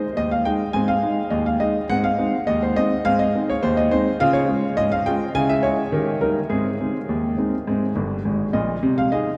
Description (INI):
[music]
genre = ragtime piano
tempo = 104 BPM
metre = 2/4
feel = straight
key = Ab major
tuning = A4 = 438 Hz
[part]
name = clear grand piano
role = solo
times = 0.0-9.4 s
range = G1 to Ab5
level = -21 LUFS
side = equal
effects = none
[sound]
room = wet cathedral reverb, RT60 6.1 s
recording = in a vast, echoing space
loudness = -21 LUFS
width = mono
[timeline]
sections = 0.0-8.8 A section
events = grand piano fill 8.0-8.8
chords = 0.0 Ab; 4.2 Db; 5.3 Dbm; 5.9 Eb7; 6.5 Ab; 8.8 Ab/C